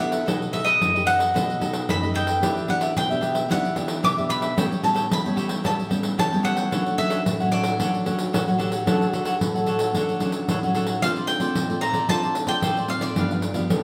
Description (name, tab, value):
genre	samba and choro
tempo	112 BPM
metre	4/4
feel	straight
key	D major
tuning	A4 = 440 Hz
part	bowl-back mandolin	melody	0.0-13.8 s	D5 to D6	-26 LUFS	equal	none
part	cavaquinho	accompaniment	0.0-13.8 s	D4 to G5	-31 LUFS	equal	none
part	nylon-string guitar	accompaniment	0.0-13.8 s	F#2 to A4	-29 LUFS	equal	none
part	pandeiro	percussion	0.1-13.8 s	none	-29 LUFS	equal	none
part	mellow trombone	second line	8.0-10.5, 13.7-13.8 s	F#4 to A4	-30 LUFS	equal	none
room	wet stone room reverb, RT60 1.2 s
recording	band playing live in one room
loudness	-23 LUFS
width	mono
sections	0.0-11.0 A section; 11.0-13.8 B section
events	none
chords	0.3 B7b13; 2.4 Em7; 4.6 A9; 6.7 Dmaj7; 11.0 Dm7; 13.2 G7